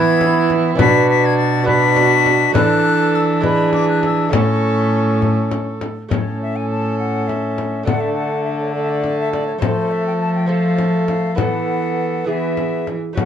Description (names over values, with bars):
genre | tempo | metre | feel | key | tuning
classical, renaissance-style consort dance | 68 BPM (dotted quarters) | 6/8 | straight | A major | A4 = 441 Hz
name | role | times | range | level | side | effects
bright concert flute | melody | 0.0-13.3 s | C5 to B6 | -22 LUFS | left 8 dB | none
warm viola | second line | 0.0-13.3 s | E4 to A4 | -23 LUFS | right 5 dB | none
brilliant trombone | accompaniment | 0.0-13.3 s | A3 to D4 | -21 LUFS | left 2 dB | none
lute | accompaniment | 0.0-13.3 s | A2 to B4 | -24 LUFS | right 2 dB | none
rich cello | bass | 0.0-13.3 s | A2 to F#3 | -20 LUFS | right 2 dB | none
frame drum | percussion | 0.2-13.3 s | none | -21 LUFS | left 5 dB | none
room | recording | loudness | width
light reverb | dark, warm production | -14 LUFS | side -9 dB against mid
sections
0.0-6.1 A section; 6.1-13.3 B section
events
none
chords
0.0 E; 0.8 Bm; 2.6 E7sus4; 3.4 E7; 4.3 A; 7.9 D5; 9.6 F; 11.4 Esus4; 12.3 E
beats
| 0.79 1.67 | 2.56 3.44 | 4.33 5.22 | 6.12 7.00 | 7.88 8.75 | 9.63 10.50 | 11.39 12.28 | 13.17